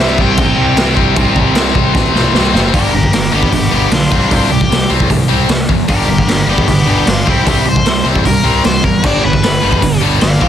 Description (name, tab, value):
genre	punk rock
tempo	152 BPM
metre	4/4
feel	straight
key	G major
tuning	A4 = 440 Hz
part	crunchy overdriven guitar	melody	0.0-10.5 s	B3 to G5	-17 LUFS	left 2 dB	tape echo
part	distorted electric guitar	riff	0.0-10.5 s	G2 to C4	-18 LUFS	right 11 dB	distortion
part	tight distorted guitar	riff	0.0-10.5 s	G2 to C4	-17 LUFS	left 13 dB	distortion
part	fuzz picked electric bass	bass	0.0-10.5 s	F#1 to E2	-18 LUFS	equal	overdrive
part	raw garage drum kit	drums	0.2-10.5 s	crash cymbal, hi-hat, kick drum, snare drum	-14 LUFS	equal	none
room	little or no reverb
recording	dense, heavily limited modern master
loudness	-9 LUFS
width	side -10 dB against mid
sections	0.0-2.7 A section; 2.7-10.5 B section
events	drum fill 2.0-2.7; overdriven electric guitar solo 2.7-10.5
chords	0.0 C5; 2.7 G; 4.1 C5; 5.9 G; 7.3 C; 9.0 G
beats	0.38 0.78 | 1.17 1.56 1.95 2.35 | 2.74 3.13 3.52 3.92 | 4.31 4.70 5.10 5.49 | 5.88 6.28 6.67 7.07 | 7.46 7.85 8.25 8.64 | 9.04 9.43 9.82 10.22